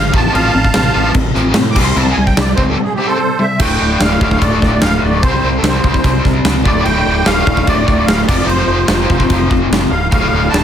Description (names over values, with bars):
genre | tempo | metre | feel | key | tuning
hard rock | 147 BPM | 4/4 | straight | D minor | A4 = 440 Hz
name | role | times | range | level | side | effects
musette accordion | melody | 0.0-10.6 s | G4 to D6 | -18 LUFS | right 2 dB | analog delay
biting overdriven guitar | riff | 0.0-10.6 s | D2 to C4 | -15 LUFS | left 2 dB | harmonic tremolo
modern bright fingered electric bass | bass | 0.0-10.6 s | D1 to A2 | -18 LUFS | equal | none
huge arena drum kit | drums | 0.1-10.6 s | crash cymbal, kick drum, snare drum | -16 LUFS | equal | none
room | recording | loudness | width
little or no reverb | none | -11 LUFS | side -9 dB against mid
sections
0.0-3.6 A section; 3.6-10.6 B section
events
accordion solo 0.0-3.6; break 2.8-3.6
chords
0.1 F/A; 1.8 C5; 3.6 Dm; 5.2 C5; 6.7 Dm; 8.3 F5; 10.1 Dm